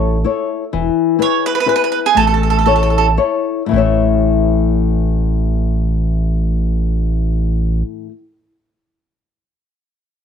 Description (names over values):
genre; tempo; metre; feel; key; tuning
italian folk, Italian serenade; 107-128 BPM; 3/4; straight; A major; A4 = 440 Hz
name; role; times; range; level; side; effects
mandolin; melody; 0.0-3.1 s; G#4 to C#5; -16 LUFS; right 10 dB; none
flamenco guitar; accompaniment; 0.0-8.2 s; A2 to E5; -17 LUFS; left 10 dB; none
round analog bass; bass; 0.0-7.8 s; E1 to A1; -16 LUFS; right 1 dB; none
room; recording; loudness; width
light reverb, small room ambience; 1960s-style stereo with parts hard left and right; -13 LUFS; side -8 dB against mid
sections
0.7-3.7 A section; 3.7-7.1 B section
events
slowing down 0.7-3.7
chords
0.0 A; 0.7 E; 2.2 A